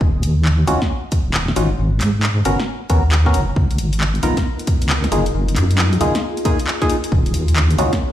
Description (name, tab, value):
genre	UK garage, two-step garage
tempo	135 BPM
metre	4/4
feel	swing 64% on 16ths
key	Eb minor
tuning	A4 = 439 Hz
part	deep soft wobble bass	bass	0.0-7.9 s	Eb1 to Ab2	-16 LUFS	equal	chorus, tube saturation, sidechain pumping
part	electronic kick drum	drums	0.0-8.0 s	none	-18 LUFS	equal	overdrive, small room ambience
part	house drum kit	drums	0.2-8.0 s	handclaps, hi-hat, snare drum	-23 LUFS	equal	overdrive, small room ambience
part	percussive organ stab	stabs	0.7-7.9 s	Bb3 to Bb4	-21 LUFS	left 1 dB	chorus, phaser, ping-pong delay
part	ethereal airy pad	sustained chords	3.9-8.1 s	Bb3 to Bb4	-27 LUFS	left 1 dB	ensemble chorus, built-in reverb, sidechain pumping
room	light reverb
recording	played on a big sound system in a bare room, stone room reverb, lossy compression artefacts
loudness	-15 LUFS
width	side -12 dB against mid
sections	0.0-8.1 A section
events	none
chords	0.0 Ebm9; 1.8 Abm11; 3.6 Db13; 5.1 Gbmaj13; 7.1 Ebm9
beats	| 0.01 0.45 0.90 1.34 | 1.79 2.23 2.67 3.12 | 3.56 4.01 4.45 4.90 | 5.34 5.79 6.23 6.67 | 7.12 7.56 8.01